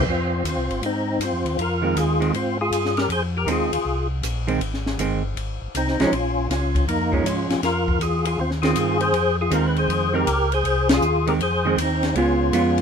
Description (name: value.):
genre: soul jazz organ trio.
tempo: 159 BPM.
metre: 4/4.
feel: swing 66% on 8ths.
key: F minor.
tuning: A4 = 440 Hz.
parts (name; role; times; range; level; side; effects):
percussive tonewheel organ; melody; 0.0-12.8 s; Bb3 to C5; -22 LUFS; left 1 dB; slow rotary speaker, overdrive, chorus vibrato.
mellow tonewheel organ; bass; 0.0-12.8 s; G1 to Ab2; -25 LUFS; equal; slow rotary speaker.
compact cocktail drum kit; drums; 0.5-12.8 s; hi-hat, kick drum, ride cymbal, snare drum; -28 LUFS; left 1 dB; none.
hollow-body jazz guitar; accompaniment; 1.8-12.8 s; Eb3 to F4; -23 LUFS; right 5 dB; none.
room: light reverb.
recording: minimal, uncompressed stereo recording.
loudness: -19 LUFS.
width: side -6 dB against mid.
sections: 0.1-12.8 A section.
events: band accent 10.8.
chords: 0.1 Fm7; 6.1 Bbm7; 7.6 Fm7; 12.2 Db7.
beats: | 0.07 0.45 0.83 1.21 | 1.58 1.96 2.34 2.72 | 3.10 3.48 3.85 4.23 | 4.61 4.99 5.36 5.74 | 6.12 6.50 6.88 7.25 | 7.63 8.01 8.38 8.76 | 9.14 9.52 9.89 10.27 | 10.65 11.03 11.40 11.78 | 12.16 12.54.